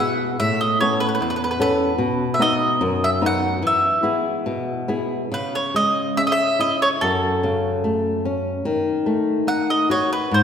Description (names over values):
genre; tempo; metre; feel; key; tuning
fado-style ballad; 73 BPM; 2/4; uneven beats, rubato; E major, C# minor from 5.3 s; A4 = 441 Hz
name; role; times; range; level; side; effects
mandolin; melody; 0.0-10.4 s; A4 to F#5; -20 LUFS; right 1 dB; none
flamenco guitar; accompaniment; 0.0-10.4 s; E2 to A4; -21 LUFS; left 2 dB; none
room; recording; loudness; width
wet concert hall reverb, RT60 1.8 s; heard from further back in the room; -18 LUFS; side -8 dB against mid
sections
0.0-5.3 A section; 5.3-10.4 B section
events
none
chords
0.4 Aadd9; 2.0 B; 3.6 E; 5.3 C#m; 7.0 F#m; 8.7 D#dim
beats
| 0.40 1.21 | 2.00 2.81 | 3.63 4.47 | 5.33 6.19 | 7.03 7.84 | 8.65 9.47 | 10.32